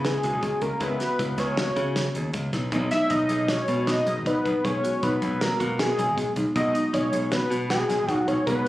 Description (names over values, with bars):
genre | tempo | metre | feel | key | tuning
progressive instrumental, band music in an uneven meter | 157 BPM | 5/4 | straight | unclear | A4 = 439 Hz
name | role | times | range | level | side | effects
fat analog lead | melody | 0.0-8.7 s | G#4 to E5 | -26 LUFS | equal | chorus
vintage hollow-body jazz guitar | accompaniment | 0.0-8.7 s | B2 to F#4 | -34 LUFS | right 1 dB | double-tracked left and right
buzzing marimba with medium hard mallets | arpeggios | 0.0-8.7 s | B3 to G#4 | -29 LUFS | equal | none
modern bright picked electric bass | bass | 0.0-8.6 s | G#1 to C#3 | -28 LUFS | equal | none
damped 70s drum kit | drums | 0.0-8.6 s | hi-hat, kick drum, snare drum | -31 LUFS | equal | none
room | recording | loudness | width
moderate small room ambience, RT60 0.5 s | recorded on a phone in the room, studio reverb, compression | -22 LUFS | side -15 dB against mid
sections
0.0-8.7 A section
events
none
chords
0.0 C#m7; 2.7 B6